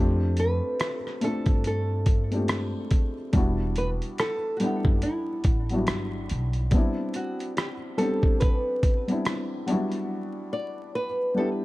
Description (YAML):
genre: lo-fi hip hop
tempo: 71 BPM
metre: 4/4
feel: swing 60% on 16ths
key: E minor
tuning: A4 = 442 Hz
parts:
  - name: felt-muted upright piano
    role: accompaniment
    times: 0.0-11.6 s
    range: F#3 to F#5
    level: -29 LUFS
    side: left 1 dB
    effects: cassette tape
  - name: upright bass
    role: bass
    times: 0.0-6.7 s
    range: E1 to G2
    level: -27 LUFS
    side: equal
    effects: none
  - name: nylon-string guitar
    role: melody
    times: 0.4-11.5 s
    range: E4 to D5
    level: -30 LUFS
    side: equal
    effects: tape echo
  - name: dusty soul sampler-style drum kit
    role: drums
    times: 0.4-10.1 s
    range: hi-hat, kick drum, rim click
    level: -24 LUFS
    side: equal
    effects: vintage 12-bit sampler grit
room: small room ambience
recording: vinyl crackle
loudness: -24 LUFS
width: side -19 dB against mid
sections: 0.0-11.6 A section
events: none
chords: 0.0 F69; 3.3 Em9; 6.7 Cmaj7; 9.7 Em9